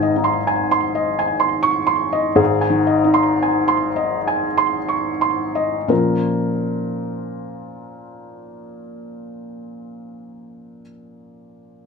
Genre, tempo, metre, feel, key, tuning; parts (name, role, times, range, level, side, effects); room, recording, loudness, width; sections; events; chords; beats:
neoclassical minimalist piano; 45-68 BPM; 3/4; rubato; Bb minor; A4 = 440 Hz
felt-muted upright piano; solo; 0.0-11.9 s; Ab1 to Db6; -18 LUFS; equal; slapback echo
light reverb; -16 LUFS; side -5 dB against mid
0.0-5.9 A section; 5.9-9.8 B section
slowing down 0.0-5.9
0.0 Ab; 5.9 Bbmadd9
0.47 1.40 | 2.39 3.44 4.59 | 5.89 7.21 8.53